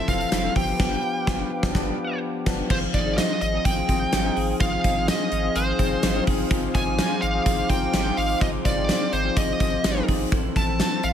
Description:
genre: 1980s-style pop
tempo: 126 BPM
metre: 4/4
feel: straight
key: unclear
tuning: A4 = 442 Hz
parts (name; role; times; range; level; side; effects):
- smooth overdriven lead guitar; melody; 0.0-11.1 s; C5 to A5; -26 LUFS; equal; tape echo
- bell-like tine electric piano; accompaniment; 0.0-11.1 s; E3 to G5; -28 LUFS; left 7 dB; wide subtle chorus
- warm analog pad; sustained chords; 0.0-11.1 s; Ab4 to E6; -34 LUFS; right 1 dB; chorus
- twelve-string electric guitar; riff; 0.0-11.1 s; E3 to A4; -32 LUFS; right 8 dB; analog chorus
- saturated sub bass; bass; 0.1-11.1 s; F1 to A1; -29 LUFS; right 1 dB; none
- gated 80s drum kit; drums; 0.1-11.1 s; crash cymbal, hi-hat, kick drum, snare drum, tambourine; -24 LUFS; equal; gated reverb
room: light reverb, small room reverb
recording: none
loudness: -20 LUFS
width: side -9 dB against mid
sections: 0.0-2.7 A section; 2.7-11.1 B section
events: band accent 0.8-2.7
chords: 0.0 Fmaj7; 0.6 G7; 2.7 Ab6; 10.3 Fmaj7/A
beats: 0.32 | 0.80 1.27 1.75 2.23 | 2.70 3.18 3.65 4.13 | 4.61 5.08 5.56 6.04 | 6.51 6.99 7.46 7.94 | 8.42 8.89 9.37 9.85 | 10.32 10.80

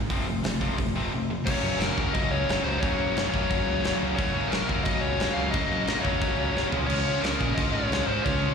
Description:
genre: punk rock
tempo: 177 BPM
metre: 4/4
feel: straight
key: unclear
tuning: A4 = 442 Hz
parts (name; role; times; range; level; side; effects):
- biting overdriven guitar; riff; 0.0-8.5 s; F2 to Db4; -32 LUFS; right 11 dB; slapback echo
- distorted electric guitar; riff; 0.0-8.5 s; Gb2 to Db4; -31 LUFS; left 13 dB; overdrive, slapback echo
- growling picked electric bass; bass; 0.0-8.5 s; F1 to Db3; -32 LUFS; equal; overdrive
- big rock drum kit; drums; 0.1-8.3 s; crash cymbal, hi-hat, kick drum, snare drum, toms; -30 LUFS; equal; none
- thick fuzz guitar; riff; 1.4-8.5 s; Gb2 to Db4; -32 LUFS; left 1 dB; distortion
- nasal lead guitar with a parked wah; melody; 1.5-8.5 s; Bb4 to F5; -29 LUFS; left 4 dB; overdrive, slapback echo, tape echo
room: little or no reverb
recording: live gig heard through the venue's PA, recital hall reverb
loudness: -23 LUFS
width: side -6 dB against mid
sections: 0.0-1.5 A section; 1.5-8.5 B section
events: drum fill 6.6-6.9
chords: 0.1 F; 1.5 Gb; 6.7 Db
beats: | 0.10 0.44 0.78 1.12 | 1.46 1.80 2.14 2.48 | 2.82 3.16 3.50 3.84 | 4.18 4.52 4.86 5.20 | 5.54 5.87 6.21 6.55 | 6.89 7.23 7.57 7.91 | 8.25

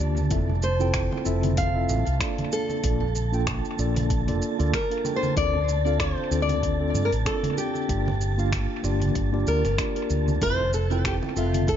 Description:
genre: sunset chillout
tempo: 95 BPM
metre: 4/4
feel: swing 56% on 16ths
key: unclear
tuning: A4 = 438 Hz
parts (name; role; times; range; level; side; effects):
- mellow tine electric piano; accompaniment; 0.0-11.8 s; Bb3 to G5; -29 LUFS; moving between left 6 dB and right 4 dB; fast stereo tremolo, auto-pan, tape echo
- mellow fretless electric bass; bass; 0.0-11.8 s; F1 to G2; -25 LUFS; equal; lush chorus
- wind-like tuned noise texture; texture; 0.0-11.8 s; A5; -38 LUFS; right 7 dB; built-in reverb
- deep house drum kit; drums; 0.2-11.8 s; finger snaps, hi-hat, shaker; -34 LUFS; equal; overdrive, analog delay
- congas; percussion; 0.2-11.8 s; none; -34 LUFS; right 3 dB; analog delay
- electronic kick drum; drums; 0.3-11.8 s; none; -30 LUFS; equal; overdrive
- flamenco guitar; melody; 0.6-11.8 s; F4 to F5; -28 LUFS; left 1 dB; tape echo
room: little or no reverb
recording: echo-heavy mix, nothing above 7.5 kHz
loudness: -22 LUFS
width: side -10 dB against mid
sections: 0.0-11.8 A section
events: none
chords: 0.3 Fmaj7; 2.5 Bbmaj7; 5.4 Dm7; 7.9 Gm7; 10.4 Fmaj7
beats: | 0.31 0.94 1.57 2.21 | 2.84 3.47 4.10 4.73 | 5.36 6.00 6.63 7.26 | 7.89 8.52 9.15 9.79 | 10.42 11.05 11.68

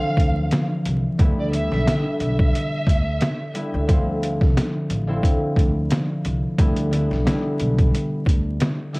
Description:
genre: hip hop, boom-bap hip-hop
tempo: 89 BPM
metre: 4/4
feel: swing 54% on 16ths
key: unclear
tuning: A4 = 440 Hz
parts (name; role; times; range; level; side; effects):
- warm studio violin section; melody; 0.0-3.8 s; D5 to F5; -28 LUFS; right 1 dB; high-pass filter, low-pass filter, cassette tape, analog delay
- concert harp; accompaniment; 0.0-9.0 s; D3 to E4; -23 LUFS; equal; cassette tape, high-pass filter, low-pass filter
- upright bass; bass; 0.2-8.6 s; A1 to D2; -25 LUFS; equal; none
- trip hop sampler-style drum kit; drums; 0.2-9.0 s; hi-hat, kick drum, snare drum; -20 LUFS; equal; overdrive, cassette tape
room: small room reverb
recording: home recording on cassette, vinyl crackle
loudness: -18 LUFS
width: side -26 dB against mid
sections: 0.0-9.0 A section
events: none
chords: 0.0 Dm9; 1.2 Em7; 3.9 Dm9; 6.6 Em7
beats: 0.52 | 1.19 1.86 2.54 3.21 | 3.89 4.56 5.24 5.91 | 6.58 7.26 7.93 8.61

